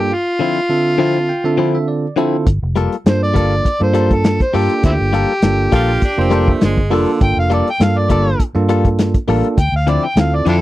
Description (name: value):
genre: straight-eighth soul blues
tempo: 101 BPM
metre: 4/4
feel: swing 53% on 16ths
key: unclear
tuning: A4 = 440 Hz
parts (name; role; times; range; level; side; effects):
- overdriven harmonica; melody; 0.0-10.6 s; C4 to G5; -18 LUFS; equal; none
- bell-like tine electric piano; accompaniment; 0.0-10.6 s; G2 to A5; -19 LUFS; right 3 dB; none
- direct-recorded clean electric guitar; stabs; 0.4-10.6 s; D3 to A4; -18 LUFS; left 6 dB; none
- vintage muted fingered electric bass; bass; 2.5-10.6 s; F1 to G2; -17 LUFS; equal; none
- warm soul drum kit; drums; 2.5-10.6 s; hi-hat, kick drum, snare drum; -15 LUFS; equal; none
- edgy tenor saxophone; second line; 5.8-7.2 s; D3 to F4; -23 LUFS; right 3 dB; none
room: little or no reverb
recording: dry, close 1970s-style studio recording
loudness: -13 LUFS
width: side -15 dB against mid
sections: 0.0-10.6 A section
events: tine electric piano fill 0.7-2.5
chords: 0.1 Dm9; 2.5 Gm9; 9.6 Dm9